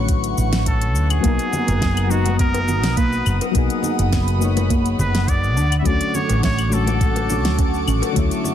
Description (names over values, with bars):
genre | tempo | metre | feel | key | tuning
sunset chillout | 104 BPM | 4/4 | straight | unclear | A4 = 440 Hz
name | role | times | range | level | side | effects
soft electric-piano-like synth keys | accompaniment | 0.0-8.5 s | D3 to C#5 | -24 LUFS | moving between left 7 dB and right 4 dB | chorus, auto-pan, tape echo
airy breathy pad | sustained chords | 0.0-8.5 s | C#4 to D#6 | -28 LUFS | left 3 dB | chorus, phaser
woody fretless electric bass | bass | 0.0-8.3 s | F#1 to D2 | -20 LUFS | equal | none
electronic kick drum | drums | 0.1-8.3 s | none | -21 LUFS | equal | none
smooth R&B drum kit | drums | 0.1-8.5 s | claves, hi-hat, shaker, snare drum | -26 LUFS | left 1 dB | none
trumpet with straight mute | melody | 0.7-7.9 s | F#4 to E5 | -26 LUFS | equal | ping-pong delay
soft round pluck | arpeggios | 1.2-8.3 s | A3 to D#4 | -28 LUFS | right 5 dB | chorus, tape echo
congas and bongos | percussion | 1.5-8.5 s | none | -29 LUFS | left 3 dB | none
room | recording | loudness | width
light reverb | dense, heavily limited modern master | -16 LUFS | side -10 dB against mid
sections
0.0-8.5 A section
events
none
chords
0.0 Dmaj7; 1.2 Bmaj7; 5.6 Dmaj7